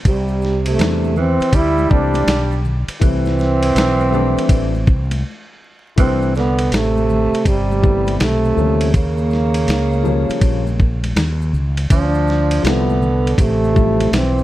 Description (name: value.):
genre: hip hop, jazz-hop.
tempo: 81 BPM.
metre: 4/4.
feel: swing 65% on 16ths.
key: C major.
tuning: A4 = 441 Hz.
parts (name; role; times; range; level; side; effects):
breathy trombone; melody; 0.1-14.4 s; G3 to E4; -19 LUFS; equal; slapback echo.
growling tenor saxophone; second line; 0.1-14.4 s; C3 to G3; -23 LUFS; right 6 dB; none.
mellow fretless electric bass; bass; 0.1-14.4 s; G1 to E2; -19 LUFS; equal; none.
dusty soul sampler-style drum kit; drums; 0.1-14.4 s; hi-hat, kick drum, ride cymbal, snare drum; -18 LUFS; equal; none.
maracas and congas; percussion; 0.1-14.4 s; none; -30 LUFS; left 2 dB; none.
dark grand piano; accompaniment; 0.8-14.1 s; E3 to E4; -24 LUFS; left 9 dB; none.
room: studio reverb.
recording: vinyl crackle.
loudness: -14 LUFS.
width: side -15 dB against mid.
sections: 0.0-6.0 A section; 6.0-14.4 B section.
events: break 5.2-6.0.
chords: 0.1 C69; 8.9 Eb9; 11.9 Dm11.